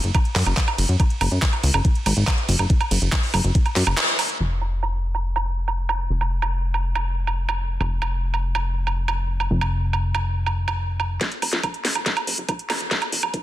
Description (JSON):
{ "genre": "psychedelic trance", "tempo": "141 BPM", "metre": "4/4", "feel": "straight", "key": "unclear", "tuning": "A4 = 440 Hz", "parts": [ { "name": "plucky analog bass", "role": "bass", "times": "0.0-13.3 s", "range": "Eb1 to Gb2", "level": "-22 LUFS", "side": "left 1 dB", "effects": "high-pass filter" }, { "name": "garage drum kit", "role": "drums", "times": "0.0-13.4 s", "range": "handclaps, hi-hat, ride cymbal, snare drum, woodblock", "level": "-24 LUFS", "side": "right 3 dB", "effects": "high-pass filter on hats, low-pass filter on hats, high-pass filter on perc, low-pass filter on perc, soft clipping on snare, high-pass filter on snare, low-pass filter on snare, high-pass filter on cymbals, low-pass filter on cymbals" }, { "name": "electronic kick drum", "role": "drums", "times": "0.1-3.6, 11.2-13.4 s", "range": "none", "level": "-20 LUFS", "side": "equal", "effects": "high-pass filter on kick" } ], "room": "light reverb, digital ambience", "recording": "dense, heavily limited modern master", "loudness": "-20 LUFS", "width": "side -14 dB against mid", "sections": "0.0-4.4 A section; 4.4-11.2 B section; 11.2-13.4 C section", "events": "drop 0.0-4.4; band accent 4.0; filter sweep on drum 4.4-11.2; build-up 11.2-13.4; drum fill 11.2-13.4", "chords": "none", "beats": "0.15 0.57 | 1.00 1.42 1.85 2.27 | 2.70 3.12 3.55 3.98 | 4.40 4.83 5.25 5.68 | 6.10 6.53 6.95 7.38 | 7.80 8.23 8.66 9.08 | 9.51 9.93 10.36 10.78 | 11.21 11.63 12.06 12.49 | 12.91 13.34" }